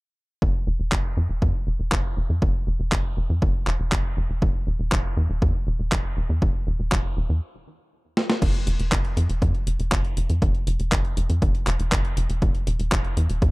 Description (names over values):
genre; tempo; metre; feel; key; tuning
italo disco; 120 BPM; 4/4; straight; unclear; A4 = 440 Hz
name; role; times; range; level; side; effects
tight sequencer bass; bass; 0.4-13.5 s; E1 to F2; -23 LUFS; equal; none
electronic kick drum; drums; 0.4-13.5 s; none; -23 LUFS; equal; none
clean 12-bit digital drum machine; drums; 0.9-13.5 s; crash cymbal, handclaps, hi-hat, snare drum; -28 LUFS; equal; none
room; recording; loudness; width
little or no reverb; dark, warm production; -21 LUFS; side -23 dB against mid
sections
0.4-8.4 A section; 8.4-13.5 B section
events
stop 7.4-8.4; drum fill 8.2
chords
none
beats
| 0.42 0.92 1.42 1.92 | 2.42 2.92 3.42 3.92 | 4.42 4.92 5.42 5.92 | 6.42 6.92 7.42 7.92 | 8.42 8.92 9.42 9.92 | 10.42 10.92 11.42 11.92 | 12.42 12.92 13.42